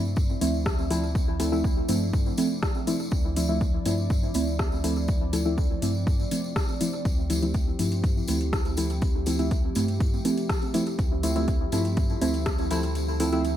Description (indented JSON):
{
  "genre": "dub techno",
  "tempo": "122 BPM",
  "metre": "4/4",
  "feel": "straight",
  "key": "D minor",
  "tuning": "A4 = 439 Hz",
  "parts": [
    { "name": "dark analog pad", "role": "sustained chords", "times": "0.0-13.6 s", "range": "F3 to D5", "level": "-35 LUFS", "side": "right 1 dB", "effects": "chorus, sidechain pumping" },
    { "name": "round analog bass", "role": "bass", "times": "0.0-13.6 s", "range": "D2 to G2", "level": "-29 LUFS", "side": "equal", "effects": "sidechain pumping" },
    { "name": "tambourine", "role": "percussion", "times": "0.1-13.5 s", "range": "none", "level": "-38 LUFS", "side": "left 2 dB", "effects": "none" },
    { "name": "electronic kick drum", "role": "drums", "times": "0.2-12.6 s", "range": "none", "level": "-26 LUFS", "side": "equal", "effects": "overdrive" },
    { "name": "deep mellow chord stab", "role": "stabs", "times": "0.4-13.4 s", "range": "F3 to E4", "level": "-27 LUFS", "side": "equal", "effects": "chorus, phaser, sidechain pumping, dub echo" },
    { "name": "deep house drum kit", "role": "drums", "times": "0.4-13.5 s", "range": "hi-hat, rim click", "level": "-35 LUFS", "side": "left 2 dB", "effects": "overdrive, dub echo" }
  ],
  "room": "little or no reverb",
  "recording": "none",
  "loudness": "-23 LUFS",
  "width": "side -11 dB against mid",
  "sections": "0.0-13.6 A section",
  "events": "filter sweep on synth stab 0.0-13.6; kick drops out 13.0-13.6",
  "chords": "0.0 Dm7"
}